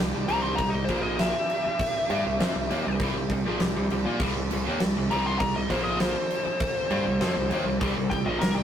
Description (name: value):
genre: hard rock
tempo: 100 BPM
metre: 4/4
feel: straight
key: unclear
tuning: A4 = 445 Hz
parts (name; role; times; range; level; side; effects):
- bright tonewheel organ; sustained chords; 0.0-8.6 s; C4 to D5; -38 LUFS; right 1 dB; chorus vibrato, fast rotary speaker
- cranked stack guitar; riff; 0.0-8.6 s; Bb2 to F4; -32 LUFS; right 4 dB; overdrive
- distorted electric guitar; riff; 0.0-8.6 s; Bb2 to F4; -35 LUFS; left 5 dB; overdrive
- modern bright picked electric bass; bass; 0.0-8.6 s; Bb1 to Bb2; -30 LUFS; equal; none
- smooth overdriven lead guitar; melody; 0.3-8.6 s; Bb4 to C6; -29 LUFS; left 1 dB; digital delay
- huge arena drum kit; drums; 0.3-8.6 s; crash cymbal, kick drum, snare drum; -29 LUFS; equal; none
- distorted electric guitar; riff; 4.2-8.6 s; Bb2 to D4; -35 LUFS; right 2 dB; none
room: moderate small room ambience, RT60 0.5 s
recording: rough rehearsal-room recording, tube saturation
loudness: -24 LUFS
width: side -9 dB against mid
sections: 0.0-8.6 A section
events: lead electric guitar solo 0.0-8.6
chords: 0.0 C